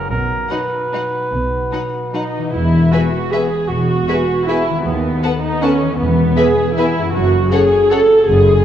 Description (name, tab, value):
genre	classical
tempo	140-171 BPM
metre	3/4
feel	rubato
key	E major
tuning	A4 = 439 Hz
part	mellow cor anglais	second line	0.0-2.4 s	A#4 to B4	-21 LUFS	right 2 dB	none
part	concert harp	arpeggios	0.0-8.6 s	F#2 to C#5	-23 LUFS	left 7 dB	none
part	dark studio cello section	bass	0.0-8.6 s	D#2 to B2	-20 LUFS	right 1 dB	none
part	dark studio double bass section	bass	0.0-8.6 s	E1 to D#2	-22 LUFS	right 2 dB	none
part	warm studio violin section	melody	0.5-8.0 s	F#5 to A5	-33 LUFS	left 4 dB	none
part	rich studio violin section	second line	0.5-8.0 s	D#4 to F#5	-24 LUFS	left 1 dB	none
part	warm studio viola section	accompaniment	0.5-8.6 s	F#3 to A4	-15 LUFS	right 1 dB	none
part	dark French horn section	sustained chords	2.9-8.1 s	B3 to A4	-24 LUFS	left 3 dB	none
room	wet scoring stage reverb, RT60 2.0 s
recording	worn, warbling old tape, cassette tape, warbly pitch drift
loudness	-13 LUFS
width	side -10 dB against mid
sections	0.0-2.6 A section; 2.6-8.6 B section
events	none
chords	0.1 B; 2.6 E; 4.9 B7/D#; 6.0 E; 7.2 F#m